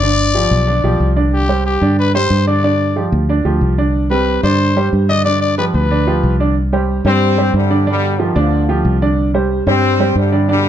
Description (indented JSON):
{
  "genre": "latin",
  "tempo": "184 BPM",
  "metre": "4/4",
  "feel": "straight",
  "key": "unclear",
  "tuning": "A4 = 440 Hz",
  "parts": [
    { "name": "growling trumpet", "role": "melody", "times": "0.0-6.4 s", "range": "G4 to Eb5", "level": "-18 LUFS", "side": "left 5 dB", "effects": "none" },
    { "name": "warm upright piano", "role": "accompaniment", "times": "0.0-10.7 s", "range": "D3 to D5", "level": "-17 LUFS", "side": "right 4 dB", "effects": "none" },
    { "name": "fingered electric bass", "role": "bass", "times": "0.0-10.7 s", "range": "G1 to G2", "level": "-16 LUFS", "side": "equal", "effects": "none" },
    { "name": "brilliant trombone section", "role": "melody", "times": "7.1-10.7 s", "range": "B2 to C4", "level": "-17 LUFS", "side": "left 4 dB", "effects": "none" }
  ],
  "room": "light reverb",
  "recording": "dark, warm production",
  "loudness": "-12 LUFS",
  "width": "side -10 dB against mid",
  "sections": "0.0-6.6 A section; 6.6-10.7 B section",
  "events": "none",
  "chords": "0.0 G7; 1.3 Csus2; 2.6 G5; 3.9 Csus2; 5.3 G7; 6.6 Csus2; 7.9 G7; 9.2 Csus2"
}